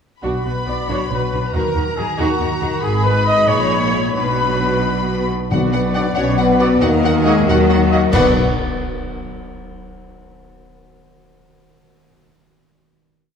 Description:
cinematic, heroic adventure film score; 92 BPM (dotted quarters); 6/8; straight; A4 = 444 Hz
warm symphonic violin section; melody; 0.2-8.4 s; F#5 to B5; -25 LUFS; left 5 dB
warm symphonic violin section; second line; 0.2-8.4 s; F#4 to D#5; -27 LUFS; left 3 dB
warm symphonic viola section; accompaniment; 0.2-8.4 s; D4 to G#4; -26 LUFS; equal
concert harp; arpeggios; 0.2-9.5 s; G#2 to A#5; -26 LUFS; left 7 dB
warm trumpet section; stabs; 0.2-8.3 s; F#4 to D#5; -22 LUFS; equal
rich symphonic cello section; bass; 0.2-8.4 s; G#2 to D#3; -24 LUFS; right 3 dB
warm symphonic double bass section; bass; 0.2-8.4 s; G#1 to D#2; -21 LUFS; right 2 dB
mellow large flute ensemble; second line; 5.5-8.4 s; F#5; -31 LUFS; left 2 dB
warm clarinet; second line; 5.5-8.3 s; A#4 to B4; -27 LUFS; right 1 dB
warm oboe; second line; 5.5-8.3 s; D5 to D#5; -28 LUFS; right 2 dB
mellow French horn section; sustained chords; 5.5-8.3 s; F#3 to D4; -19 LUFS; left 4 dB
cymbal swell, clash cymbals and concert bass drum; percussion; 5.5-9.0 s; -25 LUFS; left 1 dB
timpani; percussion; 5.5-6.1, 8.1-8.3 s; B2; -24 LUFS; left 2 dB
bright trombone section; sustained chords; 6.0-8.3 s; F#3 to B3; -28 LUFS; right 3 dB
moderate concert hall reverb, RT60 2.2 s; small room reverb; -14 LUFS; side -7 dB against mid
0.2-5.5 theme; 5.5-8.1 outro; 8.1-9.4 final chord
band accent 8.1-8.6
0.2 Bm; 1.5 D#m; 2.8 G#m; 4.2 Bm; 6.8 D#m; 8.1 Bm
| 0.24 0.90 | 1.54 2.19 | 2.83 3.49 | 4.16 4.84 | 5.51 6.17 | 6.81 7.47 | 8.13 8.79

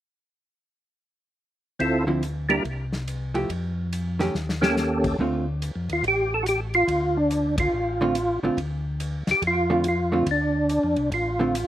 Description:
soul jazz organ trio; 142 BPM; 4/4; swing 65% on 8ths; D minor; A4 = 440 Hz
percussive tonewheel organ; melody; 1.8-11.7 s; Bb3 to Bb4; -22 LUFS; equal; slow rotary speaker, chorus vibrato, slapback echo
mellow tonewheel organ; bass; 1.8-11.6 s; A1 to F2; -28 LUFS; left 1 dB; slow rotary speaker
warm soul drum kit; drums; 1.8-11.7 s; crash cymbal, hi-hat, kick drum, ride cymbal, snare drum; -33 LUFS; left 1 dB
vintage hollow-body jazz guitar; accompaniment; 2.1-5.4, 8.0-11.5 s; D3 to G4; -25 LUFS; right 2 dB
little or no reverb; recorded outdoors, with no room sound; -22 LUFS; side -12 dB against mid
1.8-5.2 A section; 5.2-11.7 B section
drum fill 4.3-4.8; band accent 7.5
1.8 Dm9; 2.6 C; 3.5 Fadd9; 4.3 Eb7#11; 5.2 Dm7
| 1.80 2.23 2.65 3.07 | 3.50 3.92 4.34 4.77 | 5.19 5.62 6.04 6.46 | 6.88 7.31 7.73 8.15 | 8.58 9.00 9.43 9.85 | 10.27 10.70 11.12 11.54

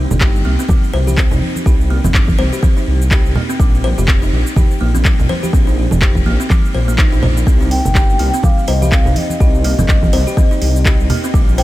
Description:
afro house; 124 BPM; 4/4; swing 57% on 16ths; C minor; A4 = 439 Hz
dark detuned saw bass; bass; 0.0-11.6 s; F1 to C2; -16 LUFS; equal; tube saturation, sidechain pumping
afro-pop drum kit; drums; 0.1-11.6 s; handclaps, hi-hat, shaker; -22 LUFS; equal; overdrive, studio reverb
congas; percussion; 0.1-11.2 s; -22 LUFS; right 1 dB
buzzing kalimba; arpeggios; 0.2-11.6 s; G3 to C5; -21 LUFS; equal; sidechain pumping, diffuse ambient delay
electronic kick drum; drums; 0.2-11.4 s; -13 LUFS; equal; overdrive, studio reverb
breathy mellow bansuri; melody; 7.7-11.6 s; Eb5 to G5; -22 LUFS; left 2 dB; diffuse ambient delay
digital ambience; -11 LUFS; side -16 dB against mid
0.0-11.6 A section
0.0 C5; 3.6 Bb5; 7.5 Cm
0.21 0.69 1.18 | 1.66 2.15 2.63 3.11 | 3.60 4.08 4.57 5.05 | 5.53 6.02 6.50 6.99 | 7.47 7.95 8.44 8.92 | 9.40 9.89 10.37 10.86 | 11.34

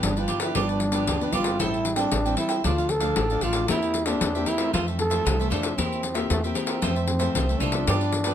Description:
samba and choro; 115 BPM; 4/4; straight; C major; A4 = 440 Hz
growling trombone; melody; 0.0-8.3 s; A3 to A4; -27 LUFS; equal
cavaquinho; accompaniment; 0.0-8.3 s; D4 to G5; -31 LUFS; right 8 dB
nylon-string guitar; accompaniment; 0.0-8.3 s; F2 to G4; -31 LUFS; left 5 dB
upright bass; bass; 0.0-8.3 s; G1 to G2; -27 LUFS; right 1 dB
pandeiro; percussion; 0.0-8.3 s; -28 LUFS; left 6 dB
light reverb; close, detailed microphones; -22 LUFS; side -9 dB against mid
0.0-8.3 A section
0.0 G7; 1.6 Am7; 2.6 Dm; 3.7 C7/E; 4.7 Fmaj7; 5.8 C7/E; 6.8 Fmaj7
0.03 0.55 1.07 | 1.59 2.12 2.64 3.16 | 3.69 4.21 4.73 5.26 | 5.78 6.30 6.83 7.35 | 7.87

